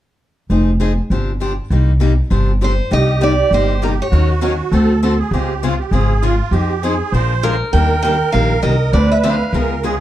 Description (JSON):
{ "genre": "acoustic string swing (jazz manouche)", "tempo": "200 BPM", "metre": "4/4", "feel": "swing 59% on 8ths", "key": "C minor", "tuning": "A4 = 437 Hz", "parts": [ { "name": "picked steel-string acoustic guitar", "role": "accompaniment", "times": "0.5-9.9 s", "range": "C3 to Bb4", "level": "-20 LUFS", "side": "left 3 dB", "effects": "none" }, { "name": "upright bass", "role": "bass", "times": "0.5-10.0 s", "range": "F1 to F2", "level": "-15 LUFS", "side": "equal", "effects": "none" }, { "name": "picked steel-string acoustic guitar", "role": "melody", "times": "2.6-4.3, 7.4-9.8 s", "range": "Bb4 to G5", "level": "-19 LUFS", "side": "right 2 dB", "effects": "none" }, { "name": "musette accordion", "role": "second line", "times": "2.9-10.0 s", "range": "F4 to C5", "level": "-21 LUFS", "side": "right 6 dB", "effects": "none" } ], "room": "light reverb", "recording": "dark, warm production", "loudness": "-13 LUFS", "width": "side -13 dB against mid", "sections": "0.5-2.9 A section; 2.9-10.0 B section", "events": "none", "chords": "0.5 Fm7; 1.1 G7sus4; 1.7 Cm7; 2.3 G7sus4; 2.9 Cm7; 4.1 Ebm7; 4.7 D7; 5.3 Dbmaj7; 6.5 Fm7; 7.1 Bb7; 7.7 Ebmaj7; 8.9 Dm7" }